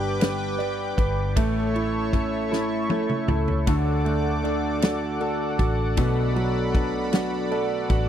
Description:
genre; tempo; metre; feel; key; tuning
six-eight pop ballad; 52 BPM (dotted quarters); 6/8; straight; D major; A4 = 440 Hz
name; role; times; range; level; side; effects
clear grand piano; accompaniment; 0.0-8.1 s; B2 to F#5; -26 LUFS; right 4 dB; none
chorused pulse-width pad; sustained chords; 0.0-8.1 s; A4 to D6; -29 LUFS; left 1 dB; none
direct-recorded clean electric guitar; arpeggios; 0.0-8.1 s; G2 to B4; -33 LUFS; left 19 dB; analog chorus
vintage muted fingered electric bass; bass; 0.0-8.1 s; G1 to D2; -28 LUFS; equal; none
natural country drum kit; drums; 0.2-8.1 s; kick drum, ride cymbal, snare drum, toms; -24 LUFS; equal; none
room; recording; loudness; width
little or no reverb; dry, close 1970s-style studio recording; -22 LUFS; side -10 dB against mid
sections
0.0-8.1 A section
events
drum fill 2.5-3.7; grand piano fill 7.1-8.1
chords
0.0 G; 1.4 A; 3.7 D; 6.0 Bm7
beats
0.21 | 1.36 2.52 | 3.67 4.82 | 5.98 7.13

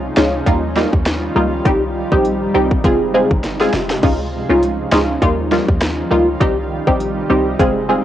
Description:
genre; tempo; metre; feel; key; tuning
dancehall; 101 BPM; 4/4; swing 56% on 16ths; unclear; A4 = 438 Hz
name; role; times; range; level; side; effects
punchy chord stab; accompaniment; 0.0-8.0 s; G3 to Ab4; -16 LUFS; equal; chorus, phaser, cassette tape
granular cloud pad; sustained chords; 0.0-8.0 s; C3 to G3; -23 LUFS; equal; built-in reverb, sidechain pumping, cassette tape
short 808-style bass; bass; 0.0-8.0 s; F1 to Eb2; -23 LUFS; equal; none
island pop drum kit; drums; 0.2-7.8 s; crash cymbal, hi-hat, kick drum, rim click, snare drum; -18 LUFS; equal; overdrive, cassette tape
room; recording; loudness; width
light reverb, digital ambience; home recording on cassette; -13 LUFS; side -12 dB against mid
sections
0.0-8.0 A section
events
drum fill 3.4-4.0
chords
0.5 Ebadd9; 1.7 Cm; 2.8 Fm; 4.0 Dbadd9; 5.2 Ebadd9; 6.4 Cm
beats
0.47 1.06 | 1.66 2.25 2.84 3.44 | 4.03 4.62 5.22 5.81 | 6.41 7.00 7.60

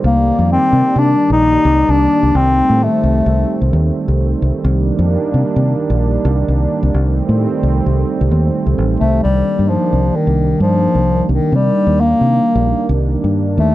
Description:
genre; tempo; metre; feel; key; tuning
progressive instrumental, band music in an uneven meter; 131 BPM; 5/4; straight; C dorian; A4 = 441 Hz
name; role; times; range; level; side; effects
dark analog pad; accompaniment; 0.0-13.7 s; Eb3 to D5; -19 LUFS; right 4 dB; chorus
fingered electric bass; bass; 0.0-13.7 s; A1 to C3; -15 LUFS; equal; none
warm bass clarinet; melody; 0.1-3.7, 9.0-13.7 s; Eb3 to Eb4; -14 LUFS; left 2 dB; none
room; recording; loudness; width
studio ambience; dry, close 1970s-style studio recording; -12 LUFS; side -15 dB against mid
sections
0.0-9.2 A section; 9.2-13.7 B section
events
none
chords
0.0 Cm7; 2.3 Cm6; 4.6 Cm7; 6.9 Am7b5; 9.2 Cm7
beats
| 0.04 0.50 0.96 1.42 1.88 | 2.34 2.80 3.26 3.72 4.18 | 4.64 5.10 5.56 6.02 6.48 | 6.94 7.40 7.86 8.32 8.78 | 9.24 9.70 10.15 10.61 11.07 | 11.53 11.99 12.44 12.90 13.36

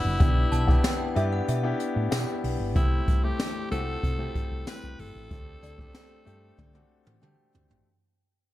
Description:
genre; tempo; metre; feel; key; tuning
1980s-style pop; 94 BPM; 4/4; straight; unclear; A4 = 439 Hz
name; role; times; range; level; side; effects
raspy alto saxophone; melody; 0.0-7.2 s; E4 to B4; -35 LUFS; equal; tape echo
warm concert grand piano; accompaniment; 0.0-7.9 s; A3 to F#5; -32 LUFS; left 3 dB; none
woody fretless electric bass; bass; 0.0-7.8 s; F#1 to D3; -29 LUFS; equal; none
jazz brush drum kit; drums; 0.2-7.9 s; hi-hat, kick drum, snare drum, tambourine, toms; -25 LUFS; equal; none
synth chime; second line; 0.5-7.8 s; B4 to A5; -36 LUFS; right 1 dB; ensemble chorus, tremolo, tape echo
room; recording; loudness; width
light reverb, studio reverb; none; -24 LUFS; side -15 dB against mid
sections
0.0-7.9 A section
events
fade-out 0.0-7.9; drum fill 6.6-7.9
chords
0.2 Em7/B; 2.8 Am7/C; 5.3 D7sus4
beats
| 0.20 0.84 1.48 2.12 | 2.76 3.40 4.03 4.67 | 5.31 5.95 6.59 7.22

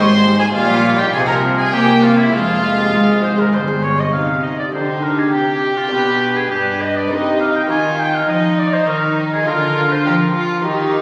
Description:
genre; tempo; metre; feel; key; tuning
classical, baroque-style concerto movement with solo episodes; 101 BPM; 3/4; straight; F minor, C minor from 4.1 s; A4 = 440 Hz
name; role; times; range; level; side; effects
clear oboe; melody; 0.0-10.4 s; E4 to Ab5; -22 LUFS; equal; none
dark studio violin section; melody; 0.0-10.4 s; F4 to C6; -28 LUFS; equal; none
rich chamber violin section; second line; 0.0-11.0 s; D4 to C5; -24 LUFS; equal; none
dark chamber viola section; accompaniment; 0.0-11.0 s; F3 to B4; -22 LUFS; equal; none
lute; accompaniment; 0.0-11.0 s; F2 to C5; -28 LUFS; equal; none
rich chamber double bass section; bass; 0.0-4.1 s; F1 to C2; -28 LUFS; equal; none
warm chamber cello section; bass; 0.0-11.0 s; F2 to F3; -22 LUFS; equal; none
room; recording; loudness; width
wet concert hall reverb, RT60 2.0 s; recorded on a phone in the room, studio reverb; -16 LUFS; mono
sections
0.0-4.1 A section; 4.1-11.0 B section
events
none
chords
0.0 Abmaj7; 0.5 Gdim/Bb; 1.1 F5/C; 1.7 C5; 2.3 Fm; 4.1 Cm; 5.9 G7/B; 7.1 Cm; 7.7 Eb5; 9.5 Bb7/D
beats
| 0.55 1.14 1.73 | 2.33 2.93 3.53 | 4.13 4.73 5.32 | 5.92 6.51 7.10 | 7.69 8.28 8.87 | 9.46 10.06 10.65

